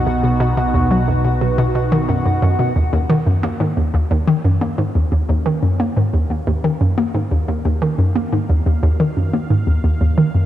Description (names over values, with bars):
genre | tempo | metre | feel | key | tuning
ambient, sequencer-driven space music | 89 BPM | 4/4 | straight | Eb minor | A4 = 440 Hz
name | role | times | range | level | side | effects
phased analog pad | sustained chords | 0.0-10.5 s | B2 to F#5 | -23 LUFS | right 1 dB | phaser, chorus
analog drone | bass | 0.0-2.7 s | B1 | -25 LUFS | equal | chorus
pulsing gated texture | texture | 0.0-2.8 s | Gb4 to Gb5 | -31 LUFS | left 1 dB | chorus, built-in reverb
hollow square pluck | riff | 0.1-10.5 s | D#2 to Bb3 | -16 LUFS | equal | chorus, analog delay
room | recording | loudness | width
moderate lush hall reverb, RT60 3.2 s | dark, warm production | -15 LUFS | side -12 dB against mid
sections
0.0-2.8 A section; 2.8-10.5 B section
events
none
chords
0.0 B; 2.8 Ebm7